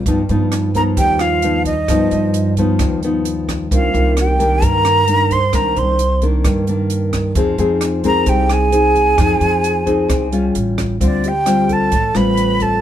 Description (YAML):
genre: bossa nova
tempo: 132 BPM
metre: 4/4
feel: straight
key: unclear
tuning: A4 = 440 Hz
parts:
  - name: nylon-string guitar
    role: accompaniment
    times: 0.0-12.8 s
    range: G2 to Ab4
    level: -18 LUFS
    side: left 3 dB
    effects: none
  - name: upright bass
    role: bass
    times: 0.0-12.8 s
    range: A1 to G2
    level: -19 LUFS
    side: right 1 dB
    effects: none
  - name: compact cocktail drum kit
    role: drums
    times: 0.1-12.7 s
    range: hi-hat, kick drum, rim click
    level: -21 LUFS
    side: right 1 dB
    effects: none
  - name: breathy mellow wooden-headed alto flute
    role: second line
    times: 0.7-12.8 s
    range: D4 to C5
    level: -22 LUFS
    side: right 5 dB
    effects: none
  - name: breathy jazz flute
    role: melody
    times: 0.8-12.8 s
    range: D5 to C6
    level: -17 LUFS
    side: equal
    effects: none
room: moderate studio reverb, RT60 0.6 s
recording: band playing live in one room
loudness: -13 LUFS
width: side -11 dB against mid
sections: 0.0-11.0 A section; 11.0-12.8 B section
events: none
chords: 0.1 Gaug7; 3.7 Cm9; 7.4 Fm7; 10.5 Aaug7; 11.0 Dm7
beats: | 0.07 0.52 0.98 1.43 | 1.89 2.35 2.80 3.26 | 3.71 4.17 4.62 5.08 | 5.54 5.99 6.45 6.90 | 7.36 7.81 8.27 8.72 | 9.18 9.64 10.09 10.55 | 11.01 11.46 11.92 12.37